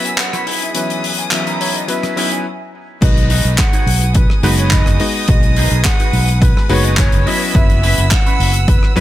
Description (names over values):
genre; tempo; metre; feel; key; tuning
nu-disco, nu disco; 106 BPM; 4/4; straight; B major; A4 = 438 Hz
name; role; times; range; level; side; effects
breathy jazz flute; melody; 0.0-9.0 s; B4 to G#5; -24 LUFS; equal; ping-pong delay
clear electric grand piano; accompaniment; 0.0-9.0 s; E3 to D#5; -22 LUFS; left 2 dB; sidechain pumping
dark chamber violin section; sustained chords; 0.0-9.0 s; G#4 to E6; -26 LUFS; equal; sidechain pumping
electric guitar with an envelope filter; riff; 0.0-9.0 s; B3 to C#5; -24 LUFS; right 3 dB; lush chorus
fingered electric bass; bass; 0.0-9.0 s; E1 to F#2; -15 LUFS; equal; tube saturation, high-pass filter
damped 70s drum kit; drums; 0.1-9.0 s; crash cymbal, handclaps, hi-hat, rim click; -20 LUFS; left 2 dB; small room ambience
electronic kick drum; drums; 3.0-8.8 s; none; -14 LUFS; equal; small room ambience
room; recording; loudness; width
small room ambience; none; -12 LUFS; side -14 dB against mid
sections
0.0-3.0 A section; 3.0-9.0 B section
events
build-up 0.0-3.0; stop 2.5-3.0; drop 3.0-9.0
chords
0.5 Emaj7; 3.0 B6; 7.3 F#7sus4